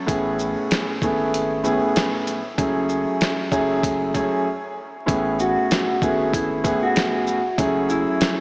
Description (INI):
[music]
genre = hip hop, boom-bap hip-hop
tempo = 96 BPM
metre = 4/4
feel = swing 60% on 16ths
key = A major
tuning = A4 = 440 Hz
[part]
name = warm upright piano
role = accompaniment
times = 0.0-8.4 s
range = F#2 to G#4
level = -21 LUFS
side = equal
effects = none
[part]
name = soft dub sub bass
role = bass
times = 0.1-8.1 s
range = F#1 to A1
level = -34 LUFS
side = equal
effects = none
[part]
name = dusty soul sampler-style drum kit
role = drums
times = 0.1-8.4 s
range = hi-hat, kick drum, shaker, snare drum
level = -24 LUFS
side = equal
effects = none
[part]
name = mellow electric guitar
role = melody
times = 5.4-8.4 s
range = E4 to F#4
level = -24 LUFS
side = equal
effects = lush chorus, analog delay
[sound]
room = moderate huge ambient reverb, RT60 4.6 s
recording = dreamy mix soaked in reverb, vinyl crackle, small speaker sound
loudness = -19 LUFS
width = side -28 dB against mid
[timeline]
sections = 0.0-5.1 A section; 5.1-8.4 B section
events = break 4.5-5.1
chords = 0.1 Amaj7; 2.6 F#m7; 5.1 Amaj7; 7.6 F#m7